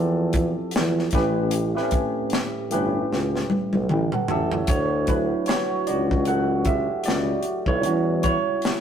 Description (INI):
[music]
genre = R&B, neo-soul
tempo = 76 BPM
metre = 4/4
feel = swing 58% on 16ths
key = unclear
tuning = A4 = 445 Hz
[part]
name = tine electric piano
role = accompaniment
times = 0.0-8.8 s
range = A2 to G5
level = -24 LUFS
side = right 1 dB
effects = phaser
[part]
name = warm tuba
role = bass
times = 0.0-8.5 s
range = G1 to E2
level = -24 LUFS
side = equal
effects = none
[part]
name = tight funk drum kit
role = drums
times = 0.3-8.8 s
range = hi-hat, kick drum, snare drum, toms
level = -25 LUFS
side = equal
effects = none
[sound]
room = light reverb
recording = rough rehearsal-room recording, tube saturation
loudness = -20 LUFS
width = side -8 dB against mid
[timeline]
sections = 0.0-4.7 A section; 4.7-8.8 B section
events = drum fill 3.1-4.7; tine electric piano solo 4.7-8.8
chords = 0.0 Fmaj9; 1.1 A9; 4.7 Dmaj7; 7.8 Em69